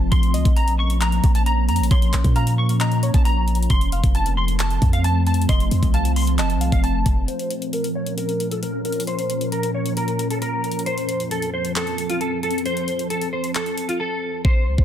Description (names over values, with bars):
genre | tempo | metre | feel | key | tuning
hip hop, trap | 134 BPM | 4/4 | half-time | Bb harmonic minor | A4 = 440 Hz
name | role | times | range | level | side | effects
clean electric guitar | melody | 0.0-14.8 s | F4 to Db6 | -25 LUFS | equal | ensemble chorus, low-pass filter
glassy FM pad | sustained chords | 0.0-14.4 s | F2 to Bb4 | -25 LUFS | equal | ensemble chorus, built-in reverb, low-pass filter
warm 808-style bass | bass | 0.0-7.3, 14.4-14.8 s | F1 to Bb2 | -20 LUFS | equal | none
trap drum kit | drums | 0.1-14.8 s | handclaps, hi-hat, kick drum | -21 LUFS | equal | none
soft round pluck | second line | 0.3-6.8 s | Db5 to F5 | -35 LUFS | left 2 dB | chorus, phaser, digital delay
room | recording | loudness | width
digital ambience | dense, heavily limited modern master | -18 LUFS | side -10 dB against mid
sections
0.0-7.3 A section; 7.3-14.4 B section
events
filter sweep 7.3-14.4; break 14.0-14.4; hi-hats muted 14.4-14.8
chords
0.1 Bbm; 3.7 F; 7.3 Bbm; 10.9 F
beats
| 0.12 0.57 1.01 1.46 | 1.91 2.36 2.81 3.25 | 3.70 4.15 4.60 5.04 | 5.49 5.94 6.39 6.83 | 7.28 7.73 8.18 8.62 | 9.07 9.52 9.97 10.42 | 10.86 11.31 11.76 12.21 | 12.65 13.10 13.55 14.00 | 14.45